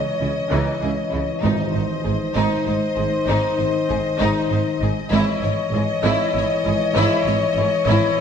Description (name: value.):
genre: cinematic, epic orchestral film score.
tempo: 65 BPM (dotted quarters).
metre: 6/8.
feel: straight.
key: C# minor.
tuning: A4 = 444 Hz.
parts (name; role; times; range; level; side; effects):
warm symphonic violin section; melody; 0.0-8.2 s; D#5; -30 LUFS; left 5 dB; none.
dark French horn section; sustained chords; 0.0-8.2 s; D#3 to D#5; -25 LUFS; left 3 dB; none.
mellow trumpet section; stabs; 0.0-8.2 s; B#4 to C#5; -24 LUFS; left 4 dB; none.
warm symphonic violin section; second line; 0.2-8.2 s; D#4 to C#5; -28 LUFS; left 3 dB; none.
warm symphonic viola section; accompaniment; 0.2-8.2 s; E3 to E4; -29 LUFS; right 1 dB; none.
rich symphonic cello section; bass; 0.2-8.0 s; G#2 to C#3; -25 LUFS; right 3 dB; none.
rich symphonic double bass section; bass; 0.2-8.2 s; G#1 to C#2; -25 LUFS; right 3 dB; none.
timpani; percussion; 1.4-2.3 s; G#2; -28 LUFS; right 1 dB; none.
room: wet scoring stage reverb, RT60 1.6 s.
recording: dark, warm production.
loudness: -18 LUFS.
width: side -7 dB against mid.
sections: 0.0-8.2 A section.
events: none.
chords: 0.0 C#madd9; 1.4 G#; 5.1 C#madd9/G#.